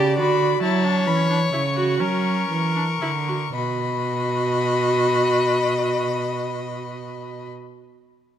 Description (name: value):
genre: classical, baroque-style fugue for string quartet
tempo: 37-47 BPM (dotted quarters)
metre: 6/8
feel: straight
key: unclear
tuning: A4 = 440 Hz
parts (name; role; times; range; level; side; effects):
- rich violin; melody; 0.0-7.5 s; A5 to C#6; -26 LUFS; left 10 dB; none
- rich violin; second line; 0.0-7.5 s; A#4 to D#5; -27 LUFS; left 3 dB; none
- clear viola; accompaniment; 0.0-7.5 s; C#4 to G4; -24 LUFS; right 2 dB; none
- rich cello; bass; 0.0-7.5 s; B2 to F#3; -25 LUFS; right 4 dB; none
room: moderate concert hall reverb, RT60 1.9 s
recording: none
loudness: -19 LUFS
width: side -9 dB against mid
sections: 0.0-3.5 A section; 3.5-6.8 B section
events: slowing down 0.0-3.5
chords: 0.0 Bm; 0.6 F#7sus4; 2.0 F#7; 3.5 B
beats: | 0.62 2.01 | 3.55 5.19